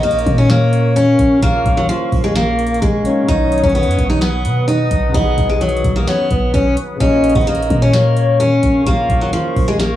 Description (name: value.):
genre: hip hop, trap.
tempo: 129 BPM.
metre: 4/4.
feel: half-time.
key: Bb phrygian.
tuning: A4 = 439 Hz.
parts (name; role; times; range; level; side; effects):
picked steel-string acoustic guitar; melody; 0.0-10.0 s; F3 to D#4; -16 LUFS; equal; cassette tape.
soft octave-layered synth lead; second line; 0.0-9.3 s; B4 to F5; -20 LUFS; left 1 dB; chorus, phaser, cassette tape, analog delay.
dark concert grand piano; accompaniment; 0.0-10.0 s; Db3 to Ab4; -24 LUFS; left 6 dB; cassette tape.
warbly tape-like pad; sustained chords; 0.0-10.0 s; Bb4 to D#6; -27 LUFS; left 1 dB; chorus, built-in reverb, cassette tape.
clean 808-style bass; bass; 0.0-10.0 s; Bb1 to B2; -17 LUFS; equal; none.
booming analog drum machine; drums; 0.0-9.9 s; hi-hat, kick drum, snare drum; -21 LUFS; equal; cassette tape.
room: little or no reverb.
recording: home recording on cassette, small room ambience.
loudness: -12 LUFS.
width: side -13 dB against mid.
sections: 0.0-10.0 A section.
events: none.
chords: 0.0 Bbm; 3.3 B; 7.0 Bbm.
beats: 0.03 0.49 0.96 | 1.43 1.89 2.35 2.82 | 3.29 3.75 4.21 4.68 | 5.15 5.61 6.08 6.54 | 7.01 7.47 7.94 8.40 | 8.87 9.33 9.80.